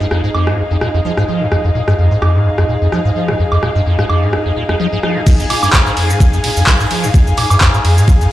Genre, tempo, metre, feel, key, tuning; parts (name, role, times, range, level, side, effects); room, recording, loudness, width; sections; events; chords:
acid house; 128 BPM; 4/4; swing 54% on 16ths; F minor; A4 = 440 Hz
warm analog pad; sustained chords; 0.0-8.3 s; Eb5 to Ab5; -23 LUFS; equal; chorus, tremolo, sidechain pumping
liquid acid bass; riff; 0.0-8.3 s; F2 to F3; -14 LUFS; equal; phaser, overdrive, ensemble chorus, sidechain pumping, ping-pong delay
dark studio string section; texture; 0.0-8.3 s; Eb4 to F5; -22 LUFS; left 1 dB; sidechain pumping
punchy analog drum machine; drums; 0.1-8.3 s; crash cymbal, handclaps, hi-hat, ride cymbal, rim click, shaker, woodblock; -18 LUFS; right 1 dB; overdrive
electronic kick drum; drums; 5.3-8.2 s; -11 LUFS; equal
huge arena drum kit; drums; 5.3-8.3 s; hi-hat, ride cymbal, snare drum; -30 LUFS; left 2 dB
moderate spring reverb, RT60 1.8 s; played on a big sound system in a bare room, stone room reverb; -11 LUFS; side -14 dB against mid
0.0-5.3 A section; 5.3-8.3 B section
drop 5.3-8.3
0.0 Fm7